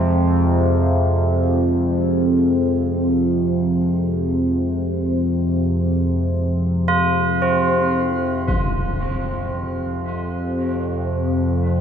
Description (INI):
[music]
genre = dark ambient drone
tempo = free time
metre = none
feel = none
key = F minor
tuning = A4 = 440 Hz
[part]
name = deep dark ambient pad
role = sustained chords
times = 0.0-11.8 s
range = C4 to C5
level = -32 LUFS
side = right 1 dB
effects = chorus, built-in reverb, shimmer reverb
[part]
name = analog drone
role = drone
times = 0.0-11.8 s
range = F2 to C3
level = -18 LUFS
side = equal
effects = chorus, phaser
[part]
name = bronze singing bowl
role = texture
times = 0.0-8.5 s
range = Ab3 to Ab4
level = -32 LUFS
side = left 2 dB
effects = none
[part]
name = tubular bells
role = arpeggios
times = 6.9-11.8 s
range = C4 to F4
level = -22 LUFS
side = right 2 dB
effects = dub echo, shimmer reverb
[part]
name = impact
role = percussion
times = 8.5-8.7 s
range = none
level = -25 LUFS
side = left 1 dB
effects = low-pass filter on sfx
[sound]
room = wet plate reverb, RT60 3.0 s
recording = echo-heavy mix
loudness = -17 LUFS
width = side -8 dB against mid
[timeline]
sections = 0.0-8.5 A section; 8.5-11.8 B section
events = fade-out on ambient pad 0.0-8.5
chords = 0.0 F5